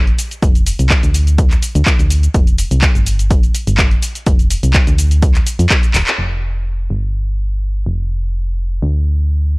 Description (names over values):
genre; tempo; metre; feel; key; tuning
piano house; 125 BPM; 4/4; straight; unclear; A4 = 438 Hz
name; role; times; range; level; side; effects
solid FM bass; bass; 0.0-9.6 s; D1 to F2; -15 LUFS; equal; tube saturation, sidechain pumping
punchy analog drum machine; drums; 0.1-6.2 s; handclaps, hi-hat, shaker; -18 LUFS; equal; none
electronic kick drum; drums; 0.4-5.8 s; none; -13 LUFS; equal; none
room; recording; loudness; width
little or no reverb; dry, gritty hardware recording, cassette tape; -12 LUFS; side -27 dB against mid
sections
0.0-6.2 A section; 6.2-9.6 B section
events
drum fill 5.9; band accent 6.1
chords
none